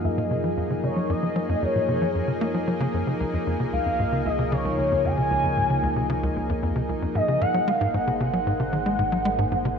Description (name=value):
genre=ambient, sequencer-driven space music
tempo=114 BPM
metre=4/4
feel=straight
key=Gb lydian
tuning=A4 = 438 Hz
part: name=expressive portamento lead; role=melody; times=0.0-9.8 s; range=Db5 to Ab5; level=-26 LUFS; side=equal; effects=lush chorus, ping-pong delay
part: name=lush unison pad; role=sustained chords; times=0.0-9.8 s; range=F3 to C5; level=-28 LUFS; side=equal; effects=chorus
part: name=tight sequencer bass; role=riff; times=0.0-9.7 s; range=Db2 to Bb3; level=-26 LUFS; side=equal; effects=analog chorus, cassette tape, ping-pong delay
part: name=analog drone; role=bass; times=0.0-9.8 s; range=Ab1 to Gb2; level=-33 LUFS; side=equal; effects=chorus
room=moderate plate reverb, RT60 2.8 s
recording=none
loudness=-22 LUFS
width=side -6 dB against mid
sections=0.0-9.8 A section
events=filter sweep on analog synth bass 0.0-9.8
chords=0.0 Gb6; 3.2 Db; 7.4 Ab7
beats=0.04 0.57 | 1.10 1.62 2.15 2.67 | 3.20 3.73 4.25 4.78 | 5.31 5.83 6.36 6.88 | 7.41 7.94 8.46 8.99 | 9.52